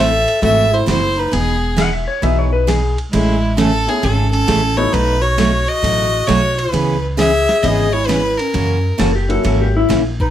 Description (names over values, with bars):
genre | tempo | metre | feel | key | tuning
country, western swing | 133 BPM | 4/4 | swing 67% on 8ths | unclear | A4 = 440 Hz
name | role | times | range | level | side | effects
clear fiddle | melody | 0.0-10.3 s | E4 to E5 | -18 LUFS | equal | plate reverb
growling clarinet | second line | 0.0-10.3 s | G#3 to A4 | -22 LUFS | equal | none
picked steel-string acoustic guitar | accompaniment | 0.0-10.0 s | B2 to G#4 | -20 LUFS | right 3 dB | none
upright bass | bass | 0.0-10.3 s | E1 to F#2 | -18 LUFS | equal | none
boom bap sampler-style drum kit | drums | 0.3-10.3 s | hi-hat, kick drum, ride cymbal, snare drum | -26 LUFS | equal | none
warm upright piano | accompaniment | 0.4-4.9, 7.6-9.9 s | F#3 to A4 | -24 LUFS | left 3 dB | none
clean lap steel guitar | second line | 1.8-3.0, 9.0-10.0 s | E4 to F#5 | -18 LUFS | left 4 dB | none
room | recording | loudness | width
light reverb | none | -13 LUFS | side -11 dB against mid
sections
0.0-10.3 A section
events
none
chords
0.0 Am6; 1.3 Emaj9; 3.1 Amaj7; 4.9 B7; 6.7 C#m7; 8.5 F#7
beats
0.42 0.88 | 1.33 1.78 2.23 2.68 | 3.13 3.58 4.03 4.48 | 4.93 5.38 5.83 6.29 | 6.74 7.19 7.64 8.09 | 8.54 8.99 9.44 9.89